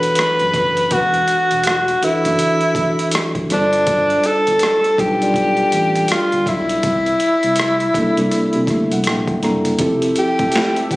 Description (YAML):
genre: R&B, neo-soul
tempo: 81 BPM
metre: 4/4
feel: swing 62% on 16ths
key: unclear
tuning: A4 = 440 Hz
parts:
  - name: breathy tenor saxophone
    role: melody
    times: 0.0-11.0 s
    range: D4 to B4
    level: -16 LUFS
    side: equal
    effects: none
  - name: mellow reed electric piano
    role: accompaniment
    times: 0.0-11.0 s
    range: C3 to Bb5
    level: -20 LUFS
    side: equal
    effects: fast tremolo
  - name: smooth synth bass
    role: bass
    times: 0.0-11.0 s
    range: E1 to C3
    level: -25 LUFS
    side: equal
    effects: none
  - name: boom bap sampler-style drum kit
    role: drums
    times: 0.0-11.0 s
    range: hi-hat, kick drum, rim click, snare drum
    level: -23 LUFS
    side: equal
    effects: overdrive
  - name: warm analog pad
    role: sustained chords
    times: 9.8-11.0 s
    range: F3 to E5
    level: -29 LUFS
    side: left 1 dB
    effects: chorus
room: light reverb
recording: recorded on a phone in the room, studio reverb, compression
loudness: -14 LUFS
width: side -19 dB against mid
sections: 0.0-9.8 A section; 9.8-11.0 B section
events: reed electric piano fill 8.3-9.8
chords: 0.0 E9sus4; 3.5 G9sus4; 6.8 C13; 9.8 Fmaj9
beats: 0.17 | 0.91 1.65 2.39 3.13 | 3.87 4.61 5.35 6.09 | 6.83 7.57 8.31 9.05 | 9.79 10.54